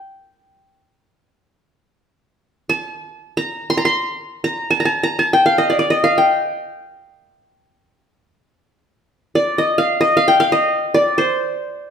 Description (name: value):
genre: Turkish makam ensemble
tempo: free time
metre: none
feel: none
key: G makam ussak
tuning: A4 = 438 Hz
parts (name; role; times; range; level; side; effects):
- qanun; solo; 0.0-11.9 s; C5 to C6; -15 LUFS; equal; none
room: wet large studio reverb, RT60 1.2 s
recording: band playing live in one room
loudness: -15 LUFS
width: side -7 dB against mid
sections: 0.0-11.9 A section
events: none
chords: none